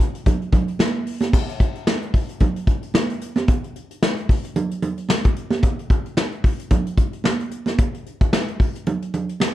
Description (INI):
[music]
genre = funk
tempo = 112 BPM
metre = 4/4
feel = swing 56% on 16ths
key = none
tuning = none
[part]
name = soft brush drum kit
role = drums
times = 0.0-9.5 s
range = crash cymbal, hi-hat, kick drum, snare drum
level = -19 LUFS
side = left 1 dB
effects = none
[part]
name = congas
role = percussion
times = 0.3-9.5 s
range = none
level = -24 LUFS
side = right 4 dB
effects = none
[sound]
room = little or no reverb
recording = none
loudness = -19 LUFS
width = side -14 dB against mid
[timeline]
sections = 0.0-1.3 A section; 1.3-9.5 B section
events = none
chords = none